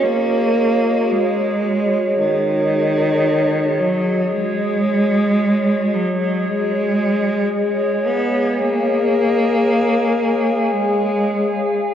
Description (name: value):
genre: ambient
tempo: free time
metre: none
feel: none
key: B lydian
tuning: A4 = 436 Hz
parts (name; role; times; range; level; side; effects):
- rich cello; melody; 0.0-11.8 s; D#3 to B3; -18 LUFS; equal; tape echo
- warbly tape-like pad; sustained chords; 0.0-11.9 s; F#4 to G#5; -19 LUFS; equal; chorus, built-in reverb
room: wet lush hall reverb, RT60 2.8 s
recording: worn, warbling old tape, cassette tape, warbly pitch drift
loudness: -15 LUFS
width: side -9 dB against mid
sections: 0.0-11.9 A section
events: none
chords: 0.0 B69 (rootless); 6.5 C#